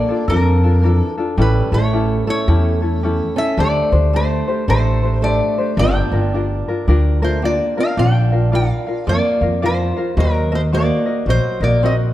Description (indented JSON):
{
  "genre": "Hawaiian",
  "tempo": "109 BPM",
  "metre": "4/4",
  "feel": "swing 62% on 8ths",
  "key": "G minor, Bb major from 8.0 s",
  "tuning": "A4 = 441 Hz",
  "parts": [
    { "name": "lap resonator guitar", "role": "melody", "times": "0.0-11.9 s", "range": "Bb4 to G5", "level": "-21 LUFS", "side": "left 1 dB", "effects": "none" },
    { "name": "fingerpicked swing-style acoustic guitar", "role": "second line", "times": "0.0-11.9 s", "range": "F3 to D4", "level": "-24 LUFS", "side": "right 4 dB", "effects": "none" },
    { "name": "tenor ukulele", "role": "accompaniment", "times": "0.0-12.1 s", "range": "C#4 to F5", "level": "-22 LUFS", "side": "left 4 dB", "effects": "none" },
    { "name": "upright bass", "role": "bass", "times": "0.3-12.1 s", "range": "G1 to F2", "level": "-16 LUFS", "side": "equal", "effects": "none" }
  ],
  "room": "light reverb",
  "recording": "dark, warm production",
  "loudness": "-14 LUFS",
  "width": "side -14 dB against mid",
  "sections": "0.0-8.0 A section; 8.0-12.1 B section",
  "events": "none",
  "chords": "0.0 Bbmaj7; 1.4 A7; 3.6 D7sus4; 5.8 Gm7; 8.0 Bb; 10.2 Ebm6"
}